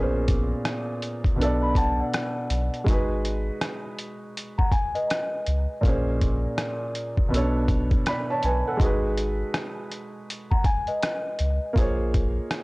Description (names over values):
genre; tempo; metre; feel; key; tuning
lo-fi hip hop; 81 BPM; 4/4; swing 62% on 16ths; unclear; A4 = 440 Hz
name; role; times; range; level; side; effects
felt-muted upright piano; accompaniment; 0.0-12.6 s; A#2 to B5; -28 LUFS; right 1 dB; cassette tape
soft dub sub bass; bass; 0.0-12.4 s; G#1 to C#2; -26 LUFS; equal; transformer saturation
trip hop sampler-style drum kit; drums; 0.3-12.6 s; hi-hat, kick drum, rim click; -25 LUFS; equal; none
large celesta; second line; 1.6-5.8, 10.5-11.7 s; B4 to B5; -29 LUFS; left 1 dB; tape echo
room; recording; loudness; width
studio ambience; dry, gritty hardware recording, transformer saturation; -22 LUFS; side -24 dB against mid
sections
0.0-12.6 A section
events
none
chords
0.0 A#m9; 1.4 Bm7; 2.9 G#m7; 5.8 A#m9; 7.3 Bm9; 8.8 G#m7; 11.8 A#m9